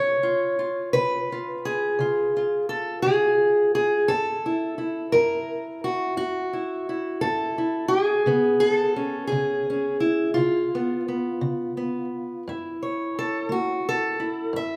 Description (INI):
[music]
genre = acoustic country blues, solo or duo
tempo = 57 BPM (dotted quarters)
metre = 12/8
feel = straight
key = unclear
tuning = A4 = 439 Hz
[part]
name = fingerpicked steel-string acoustic guitar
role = solo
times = 0.0-14.8 s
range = F#2 to E5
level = -24 LUFS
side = equal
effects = none
[sound]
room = wet recital hall reverb, RT60 1.5 s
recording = recorded in a church or concert hall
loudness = -24 LUFS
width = mono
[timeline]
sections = 0.0-12.5 A section; 12.5-14.8 B section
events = steel-string acoustic guitar solo 12.5-14.8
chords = 0.0 C#7; 4.1 F#7; 8.3 C#7; 12.5 F#7